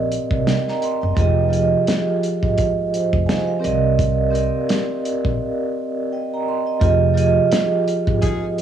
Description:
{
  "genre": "hip hop, boom-bap hip-hop",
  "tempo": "85 BPM",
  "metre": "4/4",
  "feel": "swing 58% on 16ths",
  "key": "F dorian",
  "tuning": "A4 = 441 Hz",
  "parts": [
    { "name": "vibraphone with medium mallets", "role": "accompaniment", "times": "0.0-8.6 s", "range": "F3 to C6", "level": "-19 LUFS", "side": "right 2 dB", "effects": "cassette tape" },
    { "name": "upright bass", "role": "bass", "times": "0.0-8.6 s", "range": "F1 to C2", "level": "-21 LUFS", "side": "right 1 dB", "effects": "none" },
    { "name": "warm soul drum kit", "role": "drums", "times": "0.1-8.6 s", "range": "hi-hat, kick drum, snare drum", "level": "-22 LUFS", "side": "equal", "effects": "cassette tape" },
    { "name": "clear saxophone section", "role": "stabs", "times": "8.2-8.4 s", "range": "Eb4 to Ab4", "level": "-28 LUFS", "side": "left 8 dB", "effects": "cassette tape" }
  ],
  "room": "light reverb, small room ambience",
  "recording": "home recording on cassette",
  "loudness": "-17 LUFS",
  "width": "side -9 dB against mid",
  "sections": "0.0-6.8 A section; 6.8-8.6 B section",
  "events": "break 5.4-6.8",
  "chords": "0.0 Cm7; 1.2 Fm7; 3.6 Cm7; 6.8 Fm7"
}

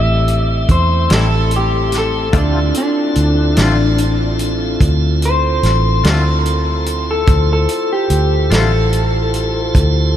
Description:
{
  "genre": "slow blues",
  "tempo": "48 BPM (dotted quarters)",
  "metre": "12/8",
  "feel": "straight",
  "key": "unclear",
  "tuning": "A4 = 440 Hz",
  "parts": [
    { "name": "electric guitar through a small old amp", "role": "melody", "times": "0.0-10.1 s", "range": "D4 to E5", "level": "-18 LUFS", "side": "left 2 dB", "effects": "lush chorus, analog delay" },
    { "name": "tonewheel organ", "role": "sustained chords", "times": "0.0-10.2 s", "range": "A3 to C5", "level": "-22 LUFS", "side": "right 1 dB", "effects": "slow rotary speaker, overdrive" },
    { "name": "vintage muted fingered electric bass", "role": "bass", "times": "0.0-10.2 s", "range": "A1 to E2", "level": "-15 LUFS", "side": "equal", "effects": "none" },
    { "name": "natural country drum kit", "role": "drums", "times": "0.3-9.9 s", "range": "hi-hat, kick drum, snare drum", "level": "-20 LUFS", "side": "equal", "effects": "none" },
    { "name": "twangy electric guitar", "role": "accompaniment", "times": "1.1-8.8 s", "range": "A2 to F4", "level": "-27 LUFS", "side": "left 5 dB", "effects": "tremolo" }
  ],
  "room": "moderate huge ambient reverb, RT60 7.9 s",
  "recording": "dreamy mix soaked in reverb",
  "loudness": "-12 LUFS",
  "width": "side -10 dB against mid",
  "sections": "0.0-10.2 A section",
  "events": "clean electric guitar solo 0.0-10.2",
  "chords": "0.0 Am7; 2.3 Dm7"
}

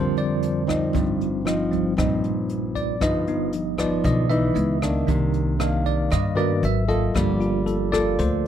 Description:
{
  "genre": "bossa nova",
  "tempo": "116 BPM",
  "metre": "4/4",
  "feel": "straight",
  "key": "G minor",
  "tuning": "A4 = 439 Hz",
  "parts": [
    { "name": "bell-like tine electric piano", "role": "accompaniment", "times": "0.0-8.5 s", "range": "D3 to F5", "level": "-24 LUFS", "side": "right 2 dB", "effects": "medium stereo tremolo" },
    { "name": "nylon-string guitar", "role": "accompaniment", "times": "0.0-8.5 s", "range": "G2 to Bb4", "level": "-25 LUFS", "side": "left 2 dB", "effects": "none" },
    { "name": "upright bass", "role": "bass", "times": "0.0-8.5 s", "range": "G1 to G2", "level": "-26 LUFS", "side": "equal", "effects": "none" },
    { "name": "jazz brush drum kit", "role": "drums", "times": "0.2-8.3 s", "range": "hi-hat, kick drum, rim click", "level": "-29 LUFS", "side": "equal", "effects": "none" }
  ],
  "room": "little or no reverb",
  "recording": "close, detailed microphones",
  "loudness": "-20 LUFS",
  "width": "side -10 dB against mid",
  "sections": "0.0-8.5 A section",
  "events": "tine electric piano solo 0.0-8.5",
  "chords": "0.0 Bb6/F; 0.9 Eb69/G; 3.0 G7b13; 4.6 C#m9; 5.1 Cm9; 6.6 Abm9; 7.2 Gm9"
}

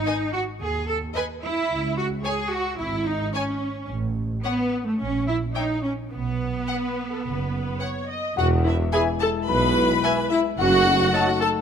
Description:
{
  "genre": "cinematic, playful, whimsical film cue",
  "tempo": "109 BPM",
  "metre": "4/4",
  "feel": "straight",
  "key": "E major",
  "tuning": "A4 = 441 Hz",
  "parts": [
    { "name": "rich symphonic cello section", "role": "bass", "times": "0.0-11.0 s", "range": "E2 to B4", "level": "-26 LUFS", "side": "right 1 dB", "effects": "none" },
    { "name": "clear chamber violin section", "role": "melody", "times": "0.1-11.2 s", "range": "F#5 to A5", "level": "-33 LUFS", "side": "left 3 dB", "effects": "none" },
    { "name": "clear chamber violin section", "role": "second line", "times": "0.1-11.5 s", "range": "C#5 to B5", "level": "-28 LUFS", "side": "left 4 dB", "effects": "none" },
    { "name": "rich studio viola section", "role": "accompaniment", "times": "0.1-11.5 s", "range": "E4 to D#5", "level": "-24 LUFS", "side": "right 1 dB", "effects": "none" },
    { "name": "rich chamber double bass section", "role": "bass", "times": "0.6-11.0 s", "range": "E1 to D#2", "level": "-29 LUFS", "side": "right 3 dB", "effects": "none" },
    { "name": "celesta", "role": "melody", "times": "8.4-11.6 s", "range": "E5 to B5", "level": "-29 LUFS", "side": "left 10 dB", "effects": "none" },
    { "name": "dark French horn section", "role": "sustained chords", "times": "8.4-11.6 s", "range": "G#3 to E4", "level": "-28 LUFS", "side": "left 6 dB", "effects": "none" },
    { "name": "clear tuba", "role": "bass", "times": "8.4-11.0 s", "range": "E1 to B1", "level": "-28 LUFS", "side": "right 3 dB", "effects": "none" },
    { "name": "clear clarinet", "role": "second line", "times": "8.9-11.3 s", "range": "D#5 to E5", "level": "-32 LUFS", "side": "left 4 dB", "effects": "none" },
    { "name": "mellow hollow silver concert flute", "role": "second line", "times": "8.9-11.2 s", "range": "A5 to B5", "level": "-35 LUFS", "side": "left 2 dB", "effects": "none" },
    { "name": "warm oboe", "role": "second line", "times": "8.9-11.3 s", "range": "G#5 to A5", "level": "-32 LUFS", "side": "left 2 dB", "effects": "none" },
    { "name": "clear bassoon", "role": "accompaniment", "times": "8.9-11.3 s", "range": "E3 to F#3", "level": "-32 LUFS", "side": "equal", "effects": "none" }
  ],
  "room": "moderate concert hall reverb, RT60 1.8 s",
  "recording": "none",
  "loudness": "-21 LUFS",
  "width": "side -8 dB against mid",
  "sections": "0.0-8.4 A section; 8.4-11.6 B section",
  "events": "none",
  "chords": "0.0 G#m; 1.7 C#m; 3.9 N.C.; 5.0 A#m; 6.1 B; 8.4 E; 10.6 D#dim/F#"
}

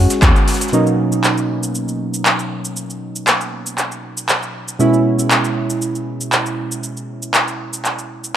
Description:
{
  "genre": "deep house",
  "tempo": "118 BPM",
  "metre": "4/4",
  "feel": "swing 54% on 16ths",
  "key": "B major",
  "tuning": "A4 = 439 Hz",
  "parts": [
    { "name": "warm analog keys", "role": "stabs", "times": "0.0-8.4 s", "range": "B2 to F#4", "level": "-19 LUFS", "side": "right 1 dB", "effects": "chorus, sidechain pumping, tape echo" },
    { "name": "deep house drum kit", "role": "drums", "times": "0.1-8.3 s", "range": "cabasa, handclaps, hi-hat", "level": "-18 LUFS", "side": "equal", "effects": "overdrive" },
    { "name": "shaker and snare drum", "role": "drums", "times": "0.1-0.7 s", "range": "none", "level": "-28 LUFS", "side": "right 1 dB", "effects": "sidechain pumping on hats, high-pass filter on hats, high-pass filter on snare, sidechain pumping on perc, high-pass filter on perc, high-pass filter on room" }
  ],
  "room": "light reverb",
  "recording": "none",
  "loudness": "-15 LUFS",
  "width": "side -10 dB against mid",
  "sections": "0.7-8.4 A section",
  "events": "band accent 0.2",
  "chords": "0.0 C#m; 0.7 Bmaj9; 4.8 C#m/B"
}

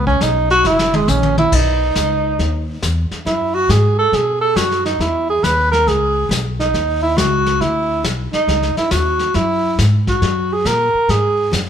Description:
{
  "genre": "jazz, small-group swing and bop",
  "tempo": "138 BPM",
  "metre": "4/4",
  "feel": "swing 66% on 8ths",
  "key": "B major",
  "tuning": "A4 = 440 Hz",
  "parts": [
    { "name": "breathy tenor saxophone", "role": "second line", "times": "0.0-11.5 s", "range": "G#3 to B4", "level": "-16 LUFS", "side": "right 2 dB", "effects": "none" },
    { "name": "upright bass", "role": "bass", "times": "0.0-11.7 s", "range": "F#1 to B2", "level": "-19 LUFS", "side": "left 1 dB", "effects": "none" },
    { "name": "vintage brush drum kit", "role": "drums", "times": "0.1-11.7 s", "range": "brushed snare drum, crash cymbal, hi-hat, kick drum, snare drum, toms", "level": "-22 LUFS", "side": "left 1 dB", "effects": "none" }
  ],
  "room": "moderate large studio reverb, RT60 1.2 s",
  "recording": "band playing live in one room",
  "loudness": "-14 LUFS",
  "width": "side -8 dB against mid",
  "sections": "0.0-1.5 A section; 1.5-11.7 A section",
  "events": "tenor saxophone solo 0.0-11.7; drum fill 0.6-1.5",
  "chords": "0.0 Badd9; 0.6 F#; 1.5 Badd9; 3.3 F#sus2; 4.1 B5; 5.0 Emaj7; 6.7 C#sus2; 7.6 Dsus2; 8.5 C#madd9; 10.2 F#add9"
}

